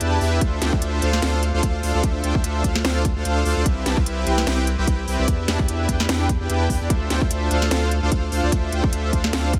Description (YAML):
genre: future bass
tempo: 148 BPM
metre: 4/4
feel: swing 55% on 16ths, half-time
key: D dorian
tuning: A4 = 440 Hz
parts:
  - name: soft supersaw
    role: riff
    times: 0.0-9.5 s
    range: C4 to A5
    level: -26 LUFS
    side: equal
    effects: cassette tape, sidechain pumping, delay
  - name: saturated sub bass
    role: bass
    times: 0.0-9.6 s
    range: C2 to E2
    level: -25 LUFS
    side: equal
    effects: sidechain pumping
  - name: trap drum kit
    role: drums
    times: 0.0-9.6 s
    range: hi-hat, snare drum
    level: -28 LUFS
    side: equal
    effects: none
  - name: electronic kick drum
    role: drums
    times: 0.4-9.6 s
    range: none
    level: -24 LUFS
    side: equal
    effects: none
room: little or no reverb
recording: heavily compressed radio sound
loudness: -21 LUFS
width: mono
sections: 0.0-9.6 A section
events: none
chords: 0.4 Dm9; 3.7 Cmaj7; 5.3 Em7; 6.9 Dm9